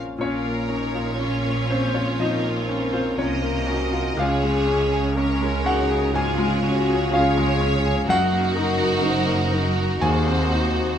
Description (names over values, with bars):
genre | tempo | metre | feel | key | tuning
classical, romantic movement for piano and orchestra | 61 BPM | 4/4 | rubato | Bb minor | A4 = 440 Hz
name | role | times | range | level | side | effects
bright grand piano | melody | 0.0-11.0 s | Db2 to Ab5 | -23 LUFS | left 1 dB | none
rich studio violin section | melody | 0.2-11.0 s | Bb4 to Eb5 | -31 LUFS | right 2 dB | none
warm studio violin section | second line | 0.2-11.0 s | F4 to Db5 | -30 LUFS | right 2 dB | none
rich studio viola section | accompaniment | 0.2-11.0 s | Bb3 to Ab4 | -30 LUFS | left 3 dB | none
rich studio cello section | bass | 0.2-11.0 s | Eb2 to Db3 | -28 LUFS | right 1 dB | none
rich studio double bass section | bass | 0.2-11.0 s | Gb1 to Eb2 | -27 LUFS | right 2 dB | none
warm French horn section | sustained chords | 2.2-11.0 s | F4 to C5 | -28 LUFS | left 2 dB | none
room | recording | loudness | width
moderate stone room reverb, RT60 1.0 s | close, detailed microphones | -19 LUFS | side -9 dB against mid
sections
0.2-11.0 A section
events
none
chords
0.2 Bbm; 4.2 Db; 8.1 Gb6; 10.0 Cdim/Eb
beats
| 0.21 1.20 2.20 3.19 | 4.19 5.16 6.14 7.13 | 8.09 9.03 10.01